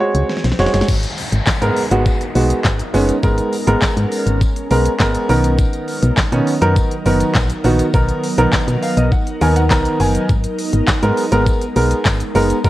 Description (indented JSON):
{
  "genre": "dance-pop",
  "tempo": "102 BPM",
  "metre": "4/4",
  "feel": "straight",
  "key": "G# minor",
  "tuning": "A4 = 440 Hz",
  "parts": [
    { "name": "warm grand piano", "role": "accompaniment", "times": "0.0-12.7 s", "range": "D#3 to A#5", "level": "-17 LUFS", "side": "right 1 dB", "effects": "sidechain pumping" },
    { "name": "swell and downlifter", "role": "sound effects", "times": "0.0-5.6 s", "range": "none", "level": "-29 LUFS", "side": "left 1 dB", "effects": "none" },
    { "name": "solid FM bass", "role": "bass", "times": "0.1-12.7 s", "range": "E#1 to B2", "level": "-17 LUFS", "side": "equal", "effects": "sidechain pumping" },
    { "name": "pop drum kit", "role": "drums", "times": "0.1-12.7 s", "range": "crash cymbal, handclaps, hi-hat, kick drum, shaker, snare drum", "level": "-18 LUFS", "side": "equal", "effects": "none" },
    { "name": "ethereal airy pad", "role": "sustained chords", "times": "1.4-12.7 s", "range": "F#3 to A#4", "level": "-24 LUFS", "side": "equal", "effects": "ensemble chorus, built-in reverb, sidechain pumping" },
    { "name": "tambourine", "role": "percussion", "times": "0.9-12.7 s", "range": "none", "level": "-39 LUFS", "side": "left 7 dB", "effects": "none" }
  ],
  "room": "light reverb, digital ambience",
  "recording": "worn, warbling old tape, cassette tape, warbly pitch drift",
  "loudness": "-13 LUFS",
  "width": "side -15 dB against mid",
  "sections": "0.9-12.7 A section",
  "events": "swell 0.0-0.9; drum fill 0.3-0.9; grand piano fill 8.5-10.3",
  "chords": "0.0 C#sus4; 0.9 G#madd9; 5.3 Bmaj7; 10.3 G#madd9",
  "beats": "0.29 | 0.88 1.47 2.06 2.65 | 3.23 3.82 4.41 5.00 | 5.59 6.17 6.76 7.35 | 7.94 8.53 9.12 9.71 | 10.29 10.88 11.47 12.06 | 12.65"
}